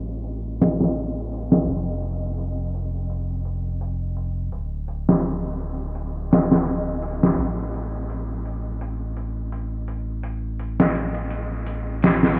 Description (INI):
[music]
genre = trip hop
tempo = 84 BPM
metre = 4/4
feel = swing 54% on 16ths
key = unclear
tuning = A4 = 441 Hz
[part]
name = warm sub bass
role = bass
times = 0.0-12.4 s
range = D1 to A1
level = -30 LUFS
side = equal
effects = none
[part]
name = trip hop sampler-style drum kit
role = drums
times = 0.2-12.4 s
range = hi-hat, snare drum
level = -24 LUFS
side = equal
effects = low-pass filter on hats, low-pass filter on snare
[sound]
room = moderate huge ambient reverb, RT60 6.9 s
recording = dreamy mix soaked in reverb, low-pass filter, small room ambience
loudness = -25 LUFS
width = mono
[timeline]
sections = 0.0-12.4 A section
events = filter sweep 0.0-12.4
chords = none